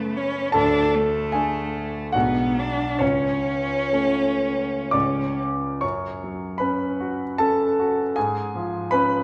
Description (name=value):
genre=classical, romantic duo for cello and grand piano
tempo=58-81 BPM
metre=3/4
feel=rubato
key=F# minor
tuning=A4 = 440 Hz
part: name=rich cello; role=melody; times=0.0-5.4 s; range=A3 to D4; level=-27 LUFS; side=equal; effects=none
part: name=clear concert grand piano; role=accompaniment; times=0.0-9.2 s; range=B1 to D6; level=-24 LUFS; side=equal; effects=none
room=wet recital hall reverb, RT60 1.9 s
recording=none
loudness=-23 LUFS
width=mono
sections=0.0-5.8 A section; 5.8-9.2 B section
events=none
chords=0.0 F#5; 0.5 D5; 2.1 G#m7b5/B; 3.0 A/C#; 4.9 C#5; 5.8 F#m; 8.2 C#7/G#